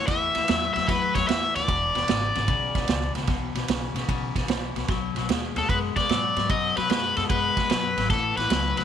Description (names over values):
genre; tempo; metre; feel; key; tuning
electric blues shuffle; 150 BPM; 4/4; swing 67% on 8ths; E mixolydian; A4 = 440 Hz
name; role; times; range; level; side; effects
cranked stack guitar; melody; 0.0-3.1, 5.6-8.8 s; A4 to E5; -25 LUFS; left 1 dB; overdrive
clean electric guitar; riff; 0.0-8.8 s; E2 to G#3; -30 LUFS; left 14 dB; none
upright bass; bass; 0.0-8.8 s; E1 to G#2; -32 LUFS; equal; none
vintage drum kit; drums; 0.1-8.8 s; kick drum, ride cymbal, snare drum; -27 LUFS; right 4 dB; none
room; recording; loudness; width
light reverb, studio reverb; 1960s-style stereo; -22 LUFS; side -9 dB against mid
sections
0.0-8.8 A section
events
none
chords
0.0 A5; 1.7 E7(no3); 4.9 B5; 8.1 Aadd9